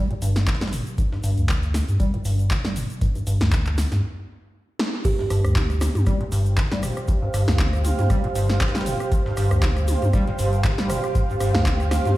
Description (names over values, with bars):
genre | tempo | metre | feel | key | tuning
acid house | 118 BPM | 4/4 | swing 55% on 16ths | G minor | A4 = 440 Hz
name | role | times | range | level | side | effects
deep acid bass | riff | 0.0-11.7 s | G2 to G3 | -24 LUFS | equal | overdrive, lush chorus, sidechain pumping
electro analog drum machine | drums | 0.1-12.1 s | crash cymbal, handclaps, hi-hat, rim click, snare drum, toms | -28 LUFS | equal | none
saturated sub bass | bass | 0.2-12.1 s | G1 to G2 | -24 LUFS | equal | sidechain pumping
breakbeat sampler-style drum kit | drums | 0.2-12.2 s | hi-hat, snare drum | -41 LUFS | left 1 dB | none
egg shaker | percussion | 0.2-12.2 s | none | -42 LUFS | left 4 dB | none
electronic kick drum | drums | 0.5-11.8 s | none | -23 LUFS | equal | none
kalimba | melody | 5.0-5.3 s | G4 | -33 LUFS | right 4 dB | tape echo
granular cloud pad | texture | 6.4-12.2 s | G4 to F5 | -27 LUFS | right 2 dB | built-in reverb, sidechain pumping
room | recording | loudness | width
light reverb, digital ambience | played on a big sound system in a bare room, stone room reverb | -19 LUFS | side -16 dB against mid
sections
0.0-5.1 A section; 5.1-12.2 B section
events
filter sweep on acid bass 0.0-5.1; break 4.0-5.1; drum fill 4.8; band accent 4.8; drop 5.1-12.2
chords
0.0 G5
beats
0.47 | 0.98 1.49 2.00 2.51 | 3.02 3.52 4.03 4.54 | 5.05 5.56 6.07 6.58 | 7.08 7.59 8.10 8.61 | 9.12 9.63 10.14 10.64 | 11.15 11.66 12.17